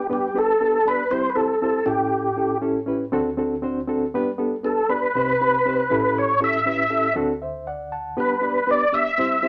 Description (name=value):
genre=soul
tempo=119 BPM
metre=4/4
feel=straight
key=G major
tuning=A4 = 440 Hz
part: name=tonewheel organ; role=melody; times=0.0-9.5 s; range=G4 to E5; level=-22 LUFS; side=equal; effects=overdrive, chorus vibrato, slow rotary speaker
part: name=reed electric piano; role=accompaniment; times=0.0-9.5 s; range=A1 to A5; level=-26 LUFS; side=equal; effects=medium tremolo
room=wet studio ambience, RT60 0.5 s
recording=none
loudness=-22 LUFS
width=mono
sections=0.1-9.5 A section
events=none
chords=0.1 G; 1.1 C/G; 1.9 A7; 3.1 D7; 4.1 G; 5.1 Cm; 5.9 A7; 7.2 D7; 8.2 G